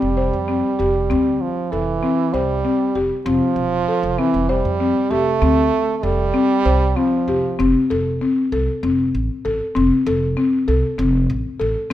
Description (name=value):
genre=contemporary instrumental, chamber music in an uneven meter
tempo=195 BPM (eighths)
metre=7/8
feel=straight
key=F major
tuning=A4 = 440 Hz
part: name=clear French horn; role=second line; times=0.0-7.6 s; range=E3 to A3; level=-21 LUFS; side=right 6 dB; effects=none
part: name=buzzing marimba with soft mallets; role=arpeggios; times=0.0-11.9 s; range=C4 to C5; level=-19 LUFS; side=left 3 dB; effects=none
part: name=upright bass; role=bass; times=0.0-11.9 s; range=E1 to F2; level=-22 LUFS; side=right 1 dB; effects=none
room=moderate recital hall reverb, RT60 1.6 s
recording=none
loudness=-16 LUFS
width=side -13 dB against mid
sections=0.0-7.6 A section; 7.6-11.9 B section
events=none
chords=0.0 F5; 7.6 F